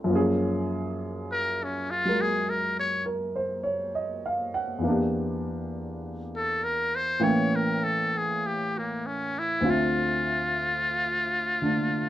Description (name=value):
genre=jazz ballad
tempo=50 BPM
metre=4/4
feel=swing 66% on 8ths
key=unclear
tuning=A4 = 444 Hz
part: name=warm baby grand piano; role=accompaniment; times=0.0-12.1 s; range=D2 to G5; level=-27 LUFS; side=equal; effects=none
part: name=trumpet with metal mute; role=melody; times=1.3-12.1 s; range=Bb3 to C#5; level=-26 LUFS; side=left 1 dB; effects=none
room=moderate club ambience, RT60 0.5 s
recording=dark, warm production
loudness=-25 LUFS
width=side -13 dB against mid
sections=0.0-12.1 A section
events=muted trumpet solo 0.0-12.1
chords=0.1 Gbmaj9; 4.8 Em7b5; 7.2 A7b9; 9.6 Dm9